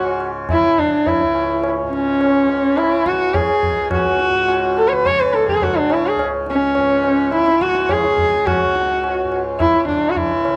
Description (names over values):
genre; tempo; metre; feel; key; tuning
indian classical, Hindustani; 105 BPM; 4/4; straight; C# raga bhairavi; A4 = 442 Hz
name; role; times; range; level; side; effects
dark sarangi; melody; 0.0-10.6 s; C#4 to C#5; -18 LUFS; equal; none
pedal harmonium; second line; 0.0-10.6 s; C#4 to C#5; -28 LUFS; equal; none
tanpura; drone; 0.0-10.6 s; C#2 to C#3; -30 LUFS; equal; none
tabla; percussion; 0.2-10.6 s; none; -25 LUFS; equal; none
room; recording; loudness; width
studio ambience; dry, close 1970s-style studio recording; -17 LUFS; mono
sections
0.0-10.6 A section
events
none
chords
none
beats
0.49 1.06 | 1.63 2.21 2.77 3.35 | 3.92 4.49 5.05 5.62 | 6.19 6.76 7.33 7.90 | 8.46 9.03 9.60 10.16